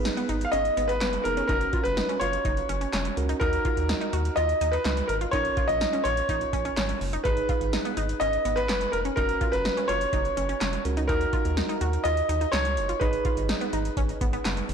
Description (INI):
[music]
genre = synth-pop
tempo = 125 BPM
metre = 4/4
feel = straight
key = G# dorian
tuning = A4 = 440 Hz
[part]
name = clear grand piano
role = melody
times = 0.0-13.9 s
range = A#4 to E#5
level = -27 LUFS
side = equal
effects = digital delay
[part]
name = bright tine electric piano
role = accompaniment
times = 0.0-14.7 s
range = B3 to A#5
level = -35 LUFS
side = right 7 dB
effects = none
[part]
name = rubbery square bass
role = bass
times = 0.0-14.7 s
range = E#1 to D#2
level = -30 LUFS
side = equal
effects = transformer saturation
[part]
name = wide unison pluck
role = arpeggios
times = 0.1-14.6 s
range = B3 to F#4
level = -33 LUFS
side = equal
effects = digital delay
[part]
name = electro analog drum machine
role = drums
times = 0.1-14.7 s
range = handclaps, hi-hat, kick drum, snare drum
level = -30 LUFS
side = equal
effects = overdrive
[sound]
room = moderate plate reverb, RT60 2.0 s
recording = blown-out, overdriven recording, overdrive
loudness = -23 LUFS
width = side -7 dB against mid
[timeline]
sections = 0.0-14.7 A section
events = none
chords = 0.0 G#m; 1.5 F#; 3.4 D#m; 5.3 A#m; 7.3 G#m; 9.2 F#; 11.1 D#m; 13.0 G#m